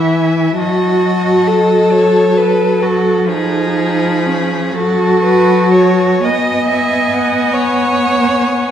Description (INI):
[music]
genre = classical, slow romantic movement for string quartet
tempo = 39-47 BPM (dotted quarters)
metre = 6/8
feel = rubato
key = unclear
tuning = A4 = 438 Hz
[part]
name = rich violin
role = melody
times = 0.0-8.7 s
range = F#5 to B5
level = -22 LUFS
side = left 7 dB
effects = none
[part]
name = rich violin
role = second line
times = 0.0-8.7 s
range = G#4 to F#5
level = -19 LUFS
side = left 1 dB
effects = none
[part]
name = warm viola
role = accompaniment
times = 0.0-8.7 s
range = E3 to B3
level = -15 LUFS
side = left 1 dB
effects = none
[part]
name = clear cello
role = bass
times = 0.0-8.7 s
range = C#4 to D#5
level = -14 LUFS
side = right 2 dB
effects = none
[sound]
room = wet scoring stage reverb, RT60 1.9 s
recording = heard from further back in the room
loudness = -11 LUFS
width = side -9 dB against mid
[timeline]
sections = 0.0-8.7 A section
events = none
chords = 0.0 E; 0.6 F#m; 3.3 C#7/E#; 4.7 F#m; 6.2 B